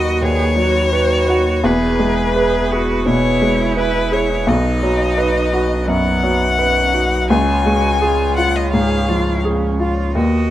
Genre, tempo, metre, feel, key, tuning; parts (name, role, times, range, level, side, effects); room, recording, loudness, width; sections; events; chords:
neoclassical piano and strings; 85 BPM; 4/4; rubato; A4 = 440 Hz
rich violin; melody; 0.0-10.5 s; B4 to G#5; -20 LUFS; left 5 dB
clear cello; second line; 0.0-10.5 s; B3 to G#4; -24 LUFS; right 6 dB; slapback echo
warm baby grand piano; accompaniment; 0.0-10.5 s; B1 to B4; -17 LUFS; equal
hand-pumped harmonium; sustained chords; 0.0-10.5 s; B3 to E#5; -26 LUFS; equal
warm sub bass; bass; 0.0-10.5 s; E1 to D#2; -22 LUFS; equal
studio ambience; rough home demo mix; -14 LUFS; side -13 dB against mid
0.0-10.5 A section
0.0 B/D#; 1.6 E; 4.5 B; 7.3 C#